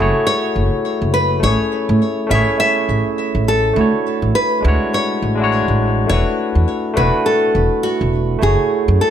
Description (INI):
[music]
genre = sunset chillout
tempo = 103 BPM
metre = 4/4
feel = swing 57% on 16ths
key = A major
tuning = A4 = 439 Hz
[part]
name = nylon-string guitar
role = melody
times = 0.0-9.1 s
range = F#4 to E5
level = -19 LUFS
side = left 1 dB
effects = digital delay
[part]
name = barky tine electric piano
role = accompaniment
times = 0.0-9.1 s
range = G#3 to C#5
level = -19 LUFS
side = moving between left 5 dB and right 7 dB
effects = overdrive, auto-pan, tape echo
[part]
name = upright bass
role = bass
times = 0.0-9.0 s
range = E1 to A2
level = -17 LUFS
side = equal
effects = none
[sound]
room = moderate concert hall reverb, RT60 1.9 s, studio reverb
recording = none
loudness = -14 LUFS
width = side -9 dB against mid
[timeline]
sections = 0.0-9.1 A section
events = none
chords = 0.0 F#m9; 1.4 Amaj7; 3.8 Dmaj9#11; 6.1 E9sus4; 8.4 F#m9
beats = 0.27 0.86 | 1.44 2.02 2.60 3.19 | 3.77 4.35 4.93 5.52 | 6.10 6.68 7.26 7.85 | 8.43 9.01